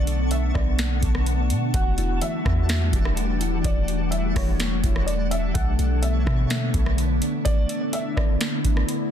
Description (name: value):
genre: hip hop, atmospheric cloud-rap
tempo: 126 BPM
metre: 4/4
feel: half-time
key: B minor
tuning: A4 = 441 Hz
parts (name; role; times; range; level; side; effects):
- felt-muted upright piano; melody; 0.0-9.1 s; C#5 to F#5; -33 LUFS; left 1 dB; low-pass filter, ping-pong delay
- glassy FM pad; sustained chords; 0.0-9.1 s; D3 to F#5; -27 LUFS; left 2 dB; ensemble chorus, built-in reverb, sidechain pumping
- warbly lo-fi synth keys; arpeggios; 0.0-9.1 s; E3 to A4; -35 LUFS; left 1 dB; chorus, low-pass filter, ping-pong delay
- warm 808-style bass; bass; 0.0-7.2 s; E1 to B2; -24 LUFS; equal; none
- twinkling granular texture; texture; 0.0-7.4 s; D4 to C#6; -37 LUFS; right 1 dB; built-in reverb
- booming analog drum machine; drums; 0.1-9.0 s; hi-hat, kick drum, rim click, snare drum; -24 LUFS; equal; none
room: little or no reverb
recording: dense, heavily limited modern master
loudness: -20 LUFS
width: side -9 dB against mid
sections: 0.0-9.1 A section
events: none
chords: 0.0 Bm9; 1.7 Em11; 5.5 Bm9